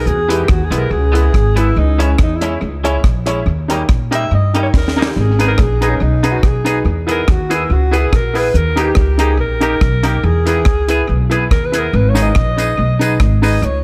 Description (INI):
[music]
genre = ska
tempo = 142 BPM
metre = 4/4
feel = swing 54% on 8ths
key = G# minor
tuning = A4 = 441 Hz
[part]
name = breathy alto saxophone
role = melody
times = 0.0-13.8 s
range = C#4 to E5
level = -22 LUFS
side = equal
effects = tape echo
[part]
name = upright bass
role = bass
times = 0.0-13.8 s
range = G#1 to A#2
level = -18 LUFS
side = equal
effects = none
[part]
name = deep reggae drum kit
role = drums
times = 0.1-13.7 s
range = hi-hat, kick drum, rim click, snare drum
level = -18 LUFS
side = equal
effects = tape echo
[part]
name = twangy electric guitar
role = accompaniment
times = 0.3-13.6 s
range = G3 to G#4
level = -26 LUFS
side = equal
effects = tape echo
[part]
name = warm upright piano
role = stabs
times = 0.3-13.6 s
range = D#4 to C#5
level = -23 LUFS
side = equal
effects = tape echo
[part]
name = tambourine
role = percussion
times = 12.2-13.5 s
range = none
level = -35 LUFS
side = equal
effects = none
[sound]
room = light reverb, small room ambience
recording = none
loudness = -14 LUFS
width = mono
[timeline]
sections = 0.0-13.8 A section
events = alto saxophone solo 0.0-13.8; drum fill 4.7-5.2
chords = 0.1 E; 1.8 C#m; 3.5 D#; 5.2 G#m; 6.9 E; 8.6 D#; 10.2 E; 11.9 G#m